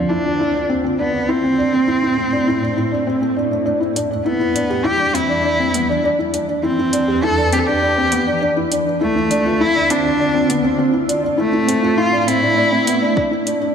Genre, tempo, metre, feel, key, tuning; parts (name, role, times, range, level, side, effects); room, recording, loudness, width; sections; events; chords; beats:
piano and strings electronica; 101 BPM; 4/4; straight; A4 = 440 Hz
rich cello; melody; 0.0-13.2 s; F3 to A4; -18 LUFS; equal; ping-pong delay
granular cloud pad; sustained chords; 0.0-13.7 s; D2 to B4; -23 LUFS; right 2 dB; built-in reverb, sidechain pumping
felt-muted upright piano; riff; 0.0-13.7 s; B3 to G4; -19 LUFS; left 1 dB; ping-pong delay
electronic hi-hat; drums; 4.0-13.6 s; -23 LUFS; right 1 dB; studio ambience
electronic kick drum; drums; 13.2-13.3 s; -22 LUFS; right 1 dB; studio ambience
wet concert hall reverb, RT60 1.9 s, small room ambience; high-pass filter, low-pass filter; -15 LUFS; side -7 dB against mid
0.0-3.7 A section; 3.7-13.7 B section
filter sweep 0.0-3.7; build-up 3.7-13.7
0.0 Dm7; 1.3 Am; 3.7 Em7; 8.4 Dm7; 10.8 Am; 13.2 Em7
0.10 0.69 | 1.29 1.88 2.48 3.07 | 3.66 4.26 4.85 5.45 | 6.04 6.63 7.23 7.82 | 8.42 9.01 9.61 10.20 | 10.79 11.39 11.98 12.57 | 13.17